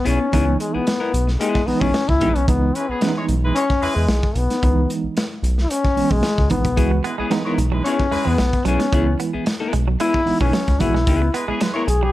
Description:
funk; 112 BPM; 4/4; straight; C# dorian; A4 = 440 Hz
warm trombone; melody; 0.0-12.1 s; G#3 to G#4; -21 LUFS; left 3 dB
clean electric guitar; accompaniment; 0.0-2.4, 6.8-12.1 s; B3 to A#4; -26 LUFS; left 5 dB
round analog bass; bass; 0.1-12.1 s; A#1 to E2; -20 LUFS; equal
crunchy breakbeat drum kit; drums; 0.1-12.0 s; hi-hat, kick drum, snare drum; -23 LUFS; equal
tine electric piano; stabs; 0.2-10.9 s; D#3 to F#4; -23 LUFS; right 4 dB; medium tremolo
warm horn section; second line; 2.8-12.1 s; E3 to C#5; -27 LUFS; right 1 dB
semi-hollow electric guitar; riff; 6.9-12.1 s; E3 to C#4; -28 LUFS; right 8 dB
small room ambience; -17 LUFS; side -15 dB against mid
0.0-12.1 A section
trombone solo 0.0-12.1
0.0 C#m7

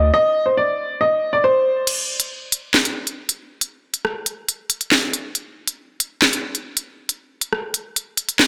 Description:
hip hop, drill; 138 BPM; 4/4; half-time; A4 = 441 Hz
clear upright piano; melody; 0.0-1.8 s; C5 to Eb5; -19 LUFS; equal; low-pass filter
drill drum kit; drums; 1.9-8.5 s; crash cymbal, handclaps, hi-hat, rim click, snare drum; -20 LUFS; equal
moderate lush hall reverb, RT60 2.2 s; -21 LUFS; mono
0.0-1.9 A section; 1.9-8.5 B section
break 1.9-8.5

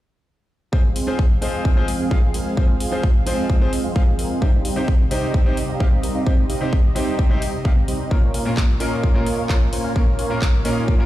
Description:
EDM, festival progressive house; 130 BPM; 4/4; straight; F minor; A4 = 440 Hz
bright grand piano; accompaniment; 0.7-11.1 s; Bb2 to F5; -26 LUFS; equal; sidechain pumping, ping-pong delay
lush unison pad; sustained chords; 0.7-11.1 s; Bb2 to F5; -28 LUFS; equal; chorus, phaser, sidechain pumping
supersaw chords; riff; 0.7-11.1 s; G3 to F5; -26 LUFS; right 2 dB; sidechain pumping, low-pass filter, ping-pong delay
electronic kick drum; drums; 0.7-11.0 s; -17 LUFS; equal
big-room dance drum kit; drums; 1.0-10.7 s; handclaps, hi-hat; -32 LUFS; left 1 dB
little or no reverb; played on a big sound system in a bare room, large studio reverb; -17 LUFS; side -15 dB against mid
0.7-11.1 A section
0.7 Fm; 4.4 Cm; 8.1 Bbm

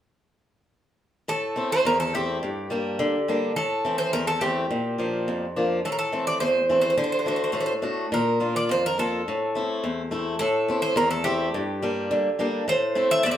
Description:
greek folk; 105 BPM; 2/4; straight; A phrygian; A4 = 440 Hz
Greek bouzouki; melody; 1.3-13.4 s; G4 to E5; -25 LUFS; right 1 dB
picked swing-style acoustic guitar; accompaniment; 1.3-13.4 s; E2 to F#4; -25 LUFS; left 1 dB
wet studio reverb, RT60 0.6 s; band playing live in one room; -22 LUFS; side -10 dB against mid
1.3-10.4 A section; 10.4-13.4 A section
1.3 Am; 2.4 Gm; 3.6 Am; 4.7 Bb; 5.8 Am; 7.0 D; 8.1 Bb; 9.3 Am; 11.5 Gm; 12.7 Am

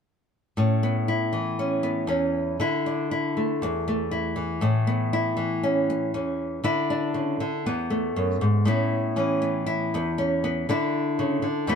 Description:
highlife; 119 BPM; 4/4; swing 55% on 16ths; A major; A4 = 440 Hz
nylon-string guitar; solo; 0.6-11.8 s; E2 to E4; -23 LUFS; left 1 dB
light reverb; -23 LUFS; side -6 dB against mid
0.6-8.7 A section; 8.7-11.8 B section
0.6 Aadd9; 2.6 Dsus2; 3.6 Esus4; 4.6 Aadd9; 6.6 Dsus2; 7.7 Esus4; 8.7 Aadd9; 10.7 Dsus2

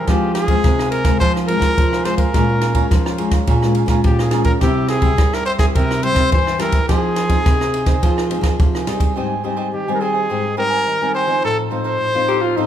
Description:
samba and choro; 106 BPM; 4/4; straight; F minor, Ab major from 9.2 s; A4 = 440 Hz
clear trumpet; melody; 0.0-12.7 s; G4 to C5; -20 LUFS; left 1 dB
cavaquinho; accompaniment; 0.0-12.7 s; Eb4 to Bb5; -25 LUFS; right 5 dB
nylon-string guitar; accompaniment; 0.0-12.7 s; G2 to Ab4; -23 LUFS; left 4 dB
nylon-string guitar; bass; 0.0-9.1 s; Bb2 to G3; -21 LUFS; right 1 dB
compact cocktail drum kit; drums; 0.1-9.1 s; kick drum, ride cymbal, rim click; -17 LUFS; right 1 dB
growling tenor saxophone; second line; 12.3-12.7 s; Eb4 to G4; -17 LUFS; left 3 dB
moderate large studio reverb, RT60 1.2 s; band playing live in one room; -14 LUFS; side -10 dB against mid
0.0-9.2 A section; 9.2-12.7 B section
0.1 Fm; 2.3 Bbm7; 4.6 C; 6.9 Fm7; 9.2 Abmaj7; 11.4 F7/A

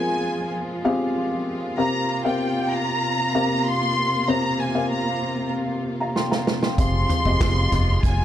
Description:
piano-driven pop; 96 BPM; 4/4; straight; F minor; A4 = 440 Hz
warm studio violin section; melody; 0.0-8.2 s; G5 to C6; -25 LUFS; equal
warm upright piano; accompaniment; 0.0-8.2 s; C3 to C6; -24 LUFS; left 2 dB
muted studio string section; sustained chords; 0.0-8.2 s; C3 to F4; -30 LUFS; right 2 dB
natural country drum kit; drums; 6.2-8.2 s; handclaps, hi-hat, kick drum, snare drum, toms; -22 LUFS; right 1 dB
modern bright fingered electric bass; bass; 6.8-8.2 s; F1; -21 LUFS; equal
moderate large studio reverb, RT60 1.1 s, small room ambience; dark, warm production; -20 LUFS; side -11 dB against mid
0.0-8.2 A section
drum fill 6.2-6.8
0.0 Fmadd9; 1.8 C7sus4; 6.8 Fmadd9

